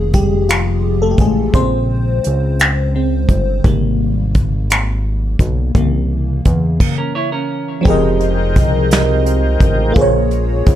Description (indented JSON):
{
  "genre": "slow six-eight R&B",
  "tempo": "57 BPM (dotted quarters)",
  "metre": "6/8",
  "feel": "straight",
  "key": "unclear",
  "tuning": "A4 = 441 Hz",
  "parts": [
    { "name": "FM electric piano with soft pad layer", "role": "accompaniment", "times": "0.0-10.8 s", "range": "C3 to Eb5", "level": "-18 LUFS", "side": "left 1 dB", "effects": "chorus, phaser, plate reverb" },
    { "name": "fat analog bass", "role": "bass", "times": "0.0-10.8 s", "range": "F1 to E2", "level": "-17 LUFS", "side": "equal", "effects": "none" },
    { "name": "soft brush drum kit", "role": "drums", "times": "0.1-10.8 s", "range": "crash cymbal, finger snaps, hi-hat, kick drum, snare drum", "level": "-15 LUFS", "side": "equal", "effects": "none" },
    { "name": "semi-hollow electric guitar", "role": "second line", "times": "7.0-7.8 s", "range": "Db4 to Db5", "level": "-23 LUFS", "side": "right 4 dB", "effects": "vibrato effect, ping-pong delay" },
    { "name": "tonewheel organ", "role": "sustained chords", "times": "7.8-10.8 s", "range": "F3 to G5", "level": "-22 LUFS", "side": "equal", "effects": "chorus vibrato, slow rotary speaker" }
  ],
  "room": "little or no reverb",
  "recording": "none",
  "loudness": "-13 LUFS",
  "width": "side -12 dB against mid",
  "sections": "0.0-7.9 A section; 7.9-10.8 B section",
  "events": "FM electric piano solo 0.0-7.9; stop 6.8-7.9",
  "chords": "0.0 Fm11; 1.5 Bbm9; 3.6 Abmaj9; 5.7 C7b9; 7.9 Fm11; 10.0 Bbm9",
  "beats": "0.48 | 1.54 2.59 | 3.64 4.70 | 5.75 6.80 | 7.85 8.91 | 9.96"
}